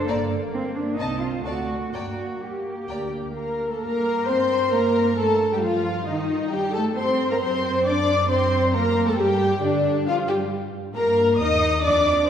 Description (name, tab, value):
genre	quick classical-period movement for string orchestra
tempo	134 BPM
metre	4/4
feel	rubato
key	G minor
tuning	A4 = 440 Hz
part	dark studio viola section	accompaniment	0.0-12.3 s	A3 to Eb5	-26 LUFS	equal	none
part	warm chamber cello section	bass	0.0-12.3 s	D3 to G4	-26 LUFS	right 2 dB	none
part	dark studio violin section	melody	0.1-12.3 s	D5 to Eb6	-28 LUFS	left 4 dB	none
part	warm studio violin section	second line	0.1-12.3 s	D4 to A5	-25 LUFS	left 2 dB	none
part	dark symphonic double bass section	bass	0.1-12.3 s	G1 to G2	-30 LUFS	right 3 dB	none
room	wet scoring stage reverb, RT60 2.0 s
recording	heard from further back in the room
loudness	-20 LUFS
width	side -8 dB against mid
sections	0.0-3.8 A section; 3.8-12.3 B section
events	none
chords	0.1 Gm; 1.0 Adim/C; 1.4 D; 1.9 Gm; 5.6 Am7b5/G; 7.4 D7/F#; 9.2 G5; 11.0 Eb/G